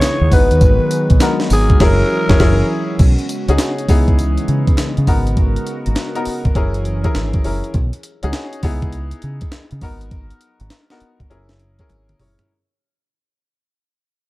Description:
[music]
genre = R&B, new jack swing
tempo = 101 BPM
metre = 4/4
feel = swing 65% on 16ths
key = unclear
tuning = A4 = 440 Hz
[part]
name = raspy alto saxophone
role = melody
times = 0.0-2.7 s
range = G#4 to C#5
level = -19 LUFS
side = equal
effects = none
[part]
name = warm baby grand piano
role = accompaniment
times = 0.0-12.5 s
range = B3 to C#5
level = -22 LUFS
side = left 2 dB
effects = none
[part]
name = chorused pulse-width pad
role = sustained chords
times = 0.0-7.7 s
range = C#3 to D#5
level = -23 LUFS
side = equal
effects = none
[part]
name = breakbeat sampler-style drum kit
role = drums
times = 0.0-12.5 s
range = crash cymbal, hi-hat, kick drum, snare drum, tambourine, toms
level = -16 LUFS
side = equal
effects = none
[part]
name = group handclap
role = percussion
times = 0.0-12.1 s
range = none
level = -36 LUFS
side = right 3 dB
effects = none
[part]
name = deep dub fingered electric bass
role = bass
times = 0.2-12.4 s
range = F#1 to C#3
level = -17 LUFS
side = equal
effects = none
[sound]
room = little or no reverb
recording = dark, warm production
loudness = -13 LUFS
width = side -19 dB against mid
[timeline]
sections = 0.0-3.0 A section; 3.0-12.5 B section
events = band accent 1.8-3.0; fade-out 3.0-12.5; drum fill 11.9-12.5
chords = 0.3 G#m9; 1.8 F#9; 3.0 B69; 3.9 C#m9; 5.1 G#m9; 6.6 F#9; 7.7 B69; 8.6 C#m9; 9.8 G#m9; 11.3 F#9

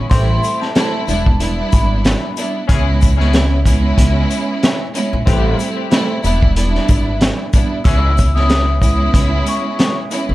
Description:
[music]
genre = hip hop, boom-bap hip-hop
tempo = 93 BPM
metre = 4/4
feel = swing 55% on 16ths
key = unclear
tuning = A4 = 440 Hz
[part]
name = warm studio string section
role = accompaniment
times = 0.0-10.3 s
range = G3 to E4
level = -19 LUFS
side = right 2 dB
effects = high-pass filter, low-pass filter
[part]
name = upright bass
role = bass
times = 0.0-10.3 s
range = E1 to C#2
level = -16 LUFS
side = equal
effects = none
[part]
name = vibraphone with soft mallets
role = melody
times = 0.1-1.9, 7.8-9.9 s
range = A5 to E6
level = -23 LUFS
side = left 2 dB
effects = high-pass filter, low-pass filter, ping-pong delay
[part]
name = mellow horn section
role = stabs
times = 0.1-8.1 s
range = E3 to G#4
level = -28 LUFS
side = left 6 dB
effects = high-pass filter, low-pass filter, ping-pong delay
[part]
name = crunchy breakbeat drum kit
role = drums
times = 0.1-10.3 s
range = hi-hat, kick drum, shaker, snare drum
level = -15 LUFS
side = equal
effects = none
[part]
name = sleigh bells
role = percussion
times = 0.1-10.3 s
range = none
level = -32 LUFS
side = left 8 dB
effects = none
[sound]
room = little or no reverb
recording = none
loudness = -12 LUFS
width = side -17 dB against mid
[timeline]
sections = 0.0-10.3 A section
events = none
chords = 0.1 Am7; 1.1 Em7; 2.7 C#m7; 5.3 Am7; 6.2 Em7; 7.9 C#m7

